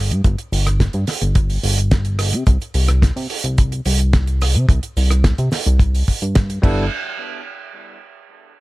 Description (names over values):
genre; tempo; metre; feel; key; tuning
nu-disco, nu disco; 108 BPM; 4/4; straight; unclear; A4 = 439 Hz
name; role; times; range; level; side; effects
chorused synth bass; bass; 0.0-6.9 s; G1 to C3; -17 LUFS; equal; none
damped 70s drum kit; drums; 0.1-6.7 s; crash cymbal, hi-hat, rim click, shaker, snare drum; -23 LUFS; right 3 dB; none
kick drum; drums; 0.2-6.7 s; none; -15 LUFS; equal; none
barky tine electric piano; accompaniment; 6.6-6.8 s; G3 to A4; -25 LUFS; right 1 dB; sidechain pumping, analog delay
room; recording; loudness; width
studio ambience; none; -15 LUFS; side -20 dB against mid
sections
0.0-6.9 A section; 6.9-8.6 B section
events
none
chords
0.0 N.C.; 2.2 C5; 6.6 G69; 6.9 N.C.